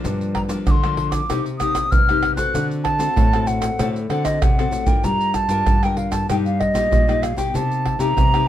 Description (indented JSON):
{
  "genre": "samba and choro",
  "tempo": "96 BPM",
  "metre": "4/4",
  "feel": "straight",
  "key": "G minor",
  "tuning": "A4 = 440 Hz",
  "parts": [
    { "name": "nylon-string guitar", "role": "accompaniment", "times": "0.0-8.5 s", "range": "G2 to Bb4", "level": "-26 LUFS", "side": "left 5 dB", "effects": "none" },
    { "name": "nylon-string guitar", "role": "bass", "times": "0.0-8.5 s", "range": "G2 to D3", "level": "-24 LUFS", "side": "left 1 dB", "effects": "none" },
    { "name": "maracas, surdo, pandeiro and tamborim", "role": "percussion", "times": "0.0-8.5 s", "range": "none", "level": "-21 LUFS", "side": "right 1 dB", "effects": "none" },
    { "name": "hollow wooden flute", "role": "melody", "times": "0.3-8.5 s", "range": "Eb5 to F#6", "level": "-21 LUFS", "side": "equal", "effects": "none" }
  ],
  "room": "light reverb",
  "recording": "minimal, uncompressed stereo recording",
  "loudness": "-17 LUFS",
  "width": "side -12 dB against mid",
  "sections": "0.0-5.0 A section; 5.0-8.5 B section",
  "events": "drum fill 4.4-5.0",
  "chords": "0.0 Gm7; 1.3 Cm7; 2.5 D7; 5.0 Gm7; 6.3 Eb/G; 7.5 Cm7",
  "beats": "| 0.05 0.67 1.30 1.92 | 2.55 3.17 3.80 4.42 | 5.05 5.67 6.30 6.92 | 7.55 8.17"
}